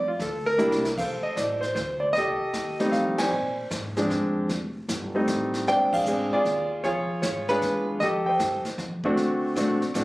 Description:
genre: jazz piano trio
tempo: 154 BPM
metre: 3/4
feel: swing 66% on 8ths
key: unclear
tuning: A4 = 436 Hz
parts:
  - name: warm concert grand piano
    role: melody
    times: 0.0-10.0 s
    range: F3 to Ab5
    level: -23 LUFS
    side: equal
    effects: none
  - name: upright bass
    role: bass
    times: 0.0-10.0 s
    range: F1 to Bb2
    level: -36 LUFS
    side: equal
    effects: none
  - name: jazz brush drum kit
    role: drums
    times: 0.2-10.0 s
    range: brushed snare drum, crash cymbal, hi-hat, kick drum, ride cymbal, snare drum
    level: -34 LUFS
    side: equal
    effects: none
room: light reverb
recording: recorded on a phone in the room, club reverb, compression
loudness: -23 LUFS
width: side -20 dB against mid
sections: 1.0-10.0 A section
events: drum fill 0.6-1.0; band accent 3.1, 5.9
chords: 0.0 Dm; 0.6 C9; 1.0 F9; 3.3 Bb9; 4.5 F9; 5.7 Bb9; 6.8 Bdim7; 8.0 F9; 9.2 D7

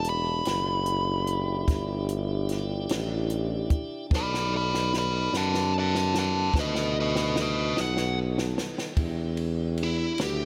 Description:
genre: slow blues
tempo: 49 BPM (dotted quarters)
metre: 12/8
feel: straight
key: E minor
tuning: A4 = 442 Hz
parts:
  - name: biting lead guitar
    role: melody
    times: 0.0-10.4 s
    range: E4 to B5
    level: -31 LUFS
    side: equal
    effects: overdrive
  - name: tonewheel organ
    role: sustained chords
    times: 0.0-10.4 s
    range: B3 to A4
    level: -39 LUFS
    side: equal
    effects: slow rotary speaker, overdrive
  - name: warm tuba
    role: bass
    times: 0.0-10.4 s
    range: E1 to F#2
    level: -31 LUFS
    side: equal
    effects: none
  - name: compact cocktail drum kit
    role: drums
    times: 0.0-10.4 s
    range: hi-hat, kick drum, ride cymbal, snare drum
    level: -33 LUFS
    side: equal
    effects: none
room: moderate lush hall reverb, RT60 2.6 s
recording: big arena sound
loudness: -27 LUFS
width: mono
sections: 0.0-9.0 A section; 9.0-10.4 B section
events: drum fill 4.1-9.0; lead electric guitar solo 9.0-10.4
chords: 0.0 Em7; 4.1 B7#9; 9.0 Em7

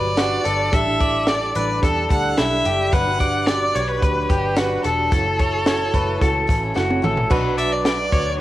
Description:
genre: jangly indie pop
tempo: 110 BPM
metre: 4/4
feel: straight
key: B minor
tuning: A4 = 441 Hz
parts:
  - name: clear violin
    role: melody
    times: 0.0-8.4 s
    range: G4 to F#5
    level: -23 LUFS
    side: right 1 dB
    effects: cassette tape
  - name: picked twelve-string acoustic guitar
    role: accompaniment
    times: 0.0-8.4 s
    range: F#2 to E4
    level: -29 LUFS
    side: right 4 dB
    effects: cassette tape
  - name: reed electric piano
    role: accompaniment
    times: 0.0-8.4 s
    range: D4 to A5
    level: -28 LUFS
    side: right 4 dB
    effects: fast tremolo, cassette tape
  - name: electric guitar through a small old amp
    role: arpeggios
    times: 0.0-8.4 s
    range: E4 to D5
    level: -23 LUFS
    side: left 3 dB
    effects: cassette tape
  - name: vintage muted picked electric bass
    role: bass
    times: 0.0-8.4 s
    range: E1 to E2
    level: -26 LUFS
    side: equal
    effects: tube saturation
  - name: compact cocktail drum kit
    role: drums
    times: 0.2-8.3 s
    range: crash cymbal, hi-hat, kick drum, snare drum, toms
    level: -22 LUFS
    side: equal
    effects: cassette tape
room: light reverb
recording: home recording on cassette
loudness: -17 LUFS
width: side -14 dB against mid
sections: 0.0-7.3 A section; 7.3-8.4 B section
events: reed electric piano fill 6.2-7.3; drum fill 6.8-7.3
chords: 0.0 Gmaj7; 0.7 A7sus4; 2.9 Gmaj7; 5.1 F#m7; 7.3 Bm

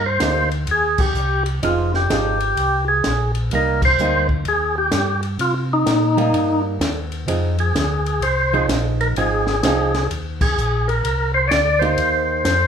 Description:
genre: soul jazz organ trio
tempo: 127 BPM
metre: 4/4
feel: swing 65% on 8ths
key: C minor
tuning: A4 = 441 Hz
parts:
  - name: percussive tonewheel organ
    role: melody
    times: 0.0-12.7 s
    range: Eb4 to D5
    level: -19 LUFS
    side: left 1 dB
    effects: slow rotary speaker
  - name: mellow tonewheel organ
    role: bass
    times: 0.0-12.7 s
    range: F1 to C3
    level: -22 LUFS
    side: equal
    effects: slow rotary speaker
  - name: archtop guitar, miked and amplified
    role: accompaniment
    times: 0.2-12.4 s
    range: F3 to Ab4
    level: -24 LUFS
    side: right 5 dB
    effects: none
  - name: compact cocktail drum kit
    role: drums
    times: 0.2-12.6 s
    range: crash cymbal, hi-hat, kick drum, ride cymbal, snare drum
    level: -25 LUFS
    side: equal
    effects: none
room: moderate large studio reverb, RT60 0.8 s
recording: band playing live in one room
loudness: -16 LUFS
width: side -7 dB against mid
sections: 0.0-12.7 A section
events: band accent 0.9, 3.7, 10.3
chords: 0.0 Cm7; 1.6 Fm7; 3.5 Cm7; 7.3 Fm7; 11.0 Cm7

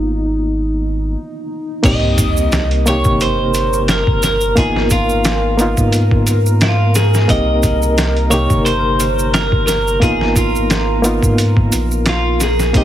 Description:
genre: trip hop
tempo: 88 BPM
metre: 4/4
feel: swing 55% on 16ths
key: unclear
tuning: A4 = 440 Hz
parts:
  - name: reed electric piano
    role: accompaniment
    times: 0.0-12.8 s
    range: C3 to G4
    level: -20 LUFS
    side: equal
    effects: fast tremolo, tape echo
  - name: warbly tape-like pad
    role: sustained chords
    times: 0.0-12.8 s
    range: Eb4 to Bb5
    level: -23 LUFS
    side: equal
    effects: chorus, built-in reverb
  - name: soft dub sub bass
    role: bass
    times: 0.0-12.8 s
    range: G1 to Ab2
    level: -18 LUFS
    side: equal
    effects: none
  - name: trip hop sampler-style drum kit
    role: drums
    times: 1.8-12.8 s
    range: crash cymbal, hi-hat, kick drum, snare drum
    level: -18 LUFS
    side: equal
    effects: none
  - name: sub drop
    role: sound effects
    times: 1.8-4.6 s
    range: none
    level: -24 LUFS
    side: equal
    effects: none
  - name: twelve-string electric guitar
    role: melody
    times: 1.9-12.8 s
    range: F4 to Eb5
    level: -18 LUFS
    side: equal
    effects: tape echo
  - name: maracas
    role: percussion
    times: 1.9-12.8 s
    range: none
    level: -26 LUFS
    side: right 4 dB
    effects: none
room: little or no reverb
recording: heavily compressed radio sound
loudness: -12 LUFS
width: side -11 dB against mid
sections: 0.0-1.8 A section; 1.8-12.8 B section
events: filter sweep on ambient pad 0.0-1.8; break 1.2-1.8; impact 1.8-4.6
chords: 0.0 Abm6; 1.8 Cm7; 4.6 Abm6; 7.3 Cm7; 10.0 Abm6

